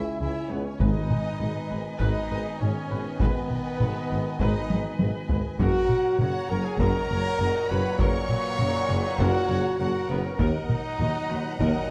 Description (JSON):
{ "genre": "cinematic, epic orchestral film score", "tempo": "100 BPM", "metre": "4/4", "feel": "straight", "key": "unclear", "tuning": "A4 = 443 Hz", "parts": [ { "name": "warm symphonic violin section", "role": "melody", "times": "0.0-11.9 s", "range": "B4 to C#6", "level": "-41 LUFS", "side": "equal", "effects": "none" }, { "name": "flute section", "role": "second line", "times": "0.0-11.9 s", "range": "A#4 to E5", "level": "-43 LUFS", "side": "equal", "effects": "none" }, { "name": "warm symphonic violin section", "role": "second line", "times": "0.0-11.9 s", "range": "D#5 to A#5", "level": "-42 LUFS", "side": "equal", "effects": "none" }, { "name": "warm symphonic viola section", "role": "accompaniment", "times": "0.0-11.9 s", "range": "E4 to F#5", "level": "-42 LUFS", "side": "equal", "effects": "none" }, { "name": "mellow French horn section", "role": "sustained chords", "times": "0.0-11.9 s", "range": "B3 to C#5", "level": "-33 LUFS", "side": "equal", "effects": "none" }, { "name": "warm trombone section", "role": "sustained chords", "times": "0.0-11.9 s", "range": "A#2 to B3", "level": "-39 LUFS", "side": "equal", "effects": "none" }, { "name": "mellow trumpet", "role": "stabs", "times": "0.0-11.9 s", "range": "B3 to C#5", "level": "-36 LUFS", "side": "equal", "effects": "none" }, { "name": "warm tuba", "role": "bass", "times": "0.0-11.7 s", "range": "F#1 to D#2", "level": "-35 LUFS", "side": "equal", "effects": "none" }, { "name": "warm symphonic cello section", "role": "bass", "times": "0.2-11.7 s", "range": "C#2 to G#2", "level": "-35 LUFS", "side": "equal", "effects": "none" }, { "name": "warm symphonic double bass section", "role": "bass", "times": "0.2-11.7 s", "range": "F#1 to D#2", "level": "-34 LUFS", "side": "equal", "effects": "none" }, { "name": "taiko ensemble", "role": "drums", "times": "0.8-11.9 s", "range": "none", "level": "-31 LUFS", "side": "equal", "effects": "none" }, { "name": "timpani", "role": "percussion", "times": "0.8-1.7 s", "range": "G#2", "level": "-32 LUFS", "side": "equal", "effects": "none" } ], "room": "wet recital hall reverb, RT60 1.3 s", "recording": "dark, warm production", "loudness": "-26 LUFS", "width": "mono", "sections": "0.0-11.9 A section", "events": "drum fill 4.7-5.6", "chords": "0.0 C#m; 0.8 G#m; 5.6 F#; 10.4 D#m", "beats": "0.20 | 0.81 1.41 2.00 2.60 | 3.21 3.81 4.41 5.00 | 5.61 6.21 6.80 7.41 | 8.01 8.61 9.21 9.80 | 10.40 11.01 11.61" }